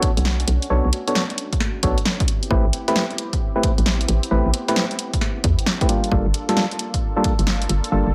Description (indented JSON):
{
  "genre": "UK garage, two-step garage",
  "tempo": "133 BPM",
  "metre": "4/4",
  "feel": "swing 65% on 16ths",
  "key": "unclear",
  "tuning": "A4 = 442 Hz",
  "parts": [
    { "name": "warm analog pad", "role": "sustained chords", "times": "0.0-8.1 s", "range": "A3 to A4", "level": "-35 LUFS", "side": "equal", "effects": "chorus, sidechain pumping" },
    { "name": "percussive organ stab", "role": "stabs", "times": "0.0-8.1 s", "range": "G3 to C#5", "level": "-26 LUFS", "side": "equal", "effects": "chorus, delay" },
    { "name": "electronic kick drum", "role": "drums", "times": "0.0-7.4 s", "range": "none", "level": "-24 LUFS", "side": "equal", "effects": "none" },
    { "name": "punchy analog drum machine", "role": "drums", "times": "0.0-7.9 s", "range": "hi-hat, snare drum", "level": "-26 LUFS", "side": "equal", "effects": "none" },
    { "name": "hollow knocking FM bass", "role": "bass", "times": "0.2-8.1 s", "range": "G1 to E2", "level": "-22 LUFS", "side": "equal", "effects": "none" }
  ],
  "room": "digital ambience",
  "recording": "none",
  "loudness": "-20 LUFS",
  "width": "mono",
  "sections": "0.0-8.1 A section",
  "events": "none",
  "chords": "0.0 Bm9; 2.3 Am9; 5.9 Gm9"
}